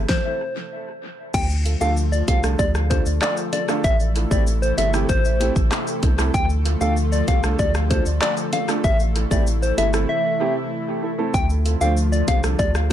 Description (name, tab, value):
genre	dancehall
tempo	96 BPM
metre	4/4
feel	straight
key	D minor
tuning	A4 = 441 Hz
part	airy breathy pad	sustained chords	0.0-12.9 s	C3 to A4	-28 LUFS	left 1 dB	chorus, sidechain pumping
part	warm sub bass	bass	0.0-12.9 s	G1 to D2	-21 LUFS	equal	none
part	soft struck synth lead	melody	0.1-12.9 s	C5 to G5	-24 LUFS	left 2 dB	chorus, tremolo, dub echo
part	pop drum kit	drums	0.1-12.9 s	crash cymbal, handclaps, hi-hat, kick drum, rim click, shaker, snare drum	-23 LUFS	equal	vintage 12-bit sampler grit, dub echo
part	bongos	percussion	1.3-12.9 s	none	-33 LUFS	left 6 dB	none
part	warm grand piano	accompaniment	1.7-12.9 s	A3 to C5	-28 LUFS	right 4 dB	sidechain pumping, dub echo
room	digital ambience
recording	echo-heavy mix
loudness	-18 LUFS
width	side -11 dB against mid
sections	0.0-1.3 A section; 1.3-12.9 B section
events	stop 0.1-1.3; break 10.1-11.3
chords	0.0 Am (rootless); 1.3 Dm; 3.8 Am; 6.3 Dm; 8.8 Am; 11.3 Dm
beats	0.09 0.72 | 1.34 1.97 2.59 3.22 | 3.84 4.47 5.09 5.72 | 6.34 6.97 7.59 8.22 | 8.84 9.47 10.09 10.72 | 11.34 11.97 12.59